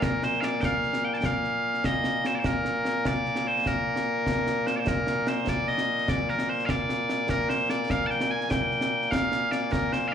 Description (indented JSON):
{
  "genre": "scottish traditional, Scottish pipe music",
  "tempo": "99 BPM (dotted quarters)",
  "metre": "6/8",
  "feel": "straight",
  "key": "Bb major",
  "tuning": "A4 = 440 Hz",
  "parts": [
    { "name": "loud bright bagpipes", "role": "melody", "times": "0.0-10.1 s", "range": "Bb2 to A5", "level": "-25 LUFS", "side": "left 1 dB", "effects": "plate reverb, slapback echo" },
    { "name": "concert snare drum and concert bass drum", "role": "drums", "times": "0.0-10.0 s", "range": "none", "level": "-30 LUFS", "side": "right 1 dB", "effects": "slapback echo" }
  ],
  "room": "moderate club reverb, RT60 0.5 s",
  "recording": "live gig heard through the venue's PA, club reverb",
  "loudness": "-24 LUFS",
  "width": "side -8 dB against mid",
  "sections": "0.0-4.9 A section; 4.9-10.1 A section",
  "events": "none",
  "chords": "none"
}